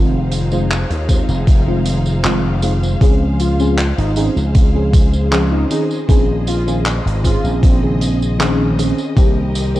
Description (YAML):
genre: vaporwave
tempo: 78 BPM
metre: 4/4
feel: straight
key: F minor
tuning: A4 = 440 Hz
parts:
  - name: FM electric piano with soft pad layer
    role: accompaniment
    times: 0.0-9.8 s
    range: Db3 to Ab4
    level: -19 LUFS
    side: left 1 dB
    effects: phaser, wide subtle chorus, cassette tape, analog delay
  - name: clear symphonic string section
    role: sustained chords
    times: 0.0-9.8 s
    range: C4 to F5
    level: -30 LUFS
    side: left 1 dB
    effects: vintage 12-bit sampler grit
  - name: slap bass with an envelope filter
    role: bass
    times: 0.0-9.8 s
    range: F1 to Eb2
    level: -17 LUFS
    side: equal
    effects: tube saturation
  - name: huge arena drum kit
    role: drums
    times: 0.3-9.8 s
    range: handclaps, hi-hat, tambourine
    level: -24 LUFS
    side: equal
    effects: vintage 12-bit sampler grit
  - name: electronic kick drum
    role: drums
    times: 1.1-9.3 s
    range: none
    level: -12 LUFS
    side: equal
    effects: overdrive, vintage 12-bit sampler grit
  - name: warm velvety synth lead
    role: melody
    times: 3.4-8.2 s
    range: C4 to F4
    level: -24 LUFS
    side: right 1 dB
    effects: chorus, analog delay
room: small room ambience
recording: dry, gritty hardware recording, cassette tape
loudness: -13 LUFS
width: side -15 dB against mid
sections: 0.0-9.8 A section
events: none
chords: 0.0 Fm7; 3.0 Dbmaj7; 5.7 Bbm11; 9.2 Cm7